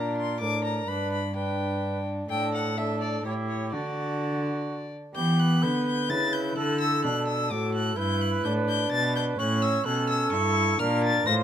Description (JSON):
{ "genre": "classical, renaissance-style consort dance", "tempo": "128 BPM", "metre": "3/4", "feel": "straight", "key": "D major", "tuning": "A4 = 440 Hz", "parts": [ { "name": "rich violin", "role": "melody", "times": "0.0-11.3 s", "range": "C#5 to Bb6", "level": "-30 LUFS", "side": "left 4 dB", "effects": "none" }, { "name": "mellow cor anglais", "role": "second line", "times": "0.0-11.4 s", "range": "F#4 to C#5", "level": "-31 LUFS", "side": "right 5 dB", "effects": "none" }, { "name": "dark viola", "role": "accompaniment", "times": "0.0-11.4 s", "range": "B3 to F#4", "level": "-30 LUFS", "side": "left 2 dB", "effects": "none" }, { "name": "rich cello", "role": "bass", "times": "0.0-11.4 s", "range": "G2 to E3", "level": "-29 LUFS", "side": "equal", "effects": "none" } ], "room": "light reverb", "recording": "none", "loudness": "-24 LUFS", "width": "side -9 dB against mid", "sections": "0.0-5.2 A section; 5.2-11.4 A section", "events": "none", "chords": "0.0 Bb; 0.9 G; 2.3 Asus4; 3.2 A7; 3.7 D; 5.2 Em; 6.6 D; 8.0 G; 9.4 A; 10.8 Bb", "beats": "0.42 | 0.89 1.36 1.83 | 2.30 2.77 3.25 | 3.73 4.20 4.68 | 5.16 5.63 6.10 | 6.57 7.04 7.51 | 7.98 8.45 8.92 | 9.39 9.86 10.33 | 10.80 11.27" }